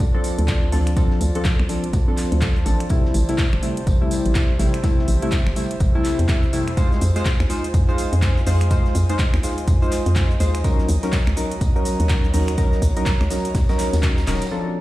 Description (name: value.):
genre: deep house.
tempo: 124 BPM.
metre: 4/4.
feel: swing 60% on 16ths.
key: unclear.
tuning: A4 = 440 Hz.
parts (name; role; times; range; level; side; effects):
hollow knocking FM bass; bass; 0.0-14.4 s; Eb1 to F2; -20 LUFS; equal; sidechain pumping.
deep reggae drum kit; drums; 0.0-14.5 s; hi-hat, snare drum, tambourine; -40 LUFS; right 1 dB; high-pass filter on hats, high-pass filter on snare, high-pass filter on perc, high-pass filter on room.
electronic kick drum; drums; 0.0-14.1 s; none; -19 LUFS; equal; overdrive.
house drum kit; drums; 0.0-14.5 s; cabasa, finger snaps, handclaps, hi-hat; -30 LUFS; equal; none.
airy breathy pad; texture; 0.0-14.8 s; F4 to Bb5; -32 LUFS; right 1 dB; chorus, sidechain pumping.
warm analog keys; stabs; 0.1-14.8 s; C3 to C5; -24 LUFS; left 1 dB; chorus, low-pass filter, digital delay.
room: small room reverb.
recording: played on a big sound system in a bare room, stone room reverb.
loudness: -17 LUFS.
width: side -16 dB against mid.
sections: 0.0-14.5 A section.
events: drum fill 14.3.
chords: 0.0 Dm7; 2.9 Am7; 6.8 Fm7; 10.6 Ebm7.